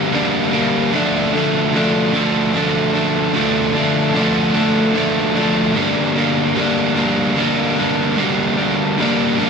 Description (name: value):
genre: rock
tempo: 50 BPM (dotted quarters)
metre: 6/8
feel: straight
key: D minor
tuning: A4 = 440 Hz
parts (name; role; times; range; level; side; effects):
- overdriven electric guitar; solo; 0.0-9.5 s; G2 to D4; -14 LUFS; equal; none
room: wet studio reverb, RT60 0.6 s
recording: band playing live in one room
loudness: -14 LUFS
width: side -5 dB against mid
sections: 0.0-9.5 A section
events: none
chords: 0.0 Gm; 0.9 Dm; 5.8 Gm